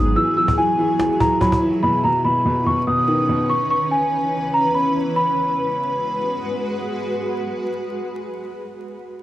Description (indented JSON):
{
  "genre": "hip hop, trap",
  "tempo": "144 BPM",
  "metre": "4/4",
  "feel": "half-time",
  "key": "G# minor",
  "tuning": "A4 = 440 Hz",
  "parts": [
    { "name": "large celesta", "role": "melody", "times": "0.0-6.4 s", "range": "G#5 to E6", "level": "-19 LUFS", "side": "equal", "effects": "low-pass filter, cassette tape" },
    { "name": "dark baby grand piano", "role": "accompaniment", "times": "0.0-3.5 s", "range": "G#2 to F#3", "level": "-20 LUFS", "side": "equal", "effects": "low-pass filter, cassette tape" },
    { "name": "granular cloud pad", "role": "sustained chords", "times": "0.0-8.7 s", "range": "D#3 to B4", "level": "-24 LUFS", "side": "equal", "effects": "built-in reverb, cassette tape" },
    { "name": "cajon", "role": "drums", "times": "0.2-1.7 s", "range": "none", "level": "-23 LUFS", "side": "equal", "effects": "none" }
  ],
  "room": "moderate studio ambience, RT60 0.5 s",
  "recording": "home recording on cassette, vinyl crackle",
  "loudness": "-17 LUFS",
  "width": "side -14 dB against mid",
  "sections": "0.0-5.2 A section; 5.2-8.5 B section",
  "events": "none",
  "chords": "0.2 Eadd9; 1.8 Badd9; 3.5 C#m7; 5.2 G#m7",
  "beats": "| 0.16 0.58 1.00 1.41 | 1.83 2.25 2.66 3.08 | 3.50 3.91 4.33 4.75 | 5.16 5.58 6.00 6.41 | 6.83 7.25 7.66 8.08"
}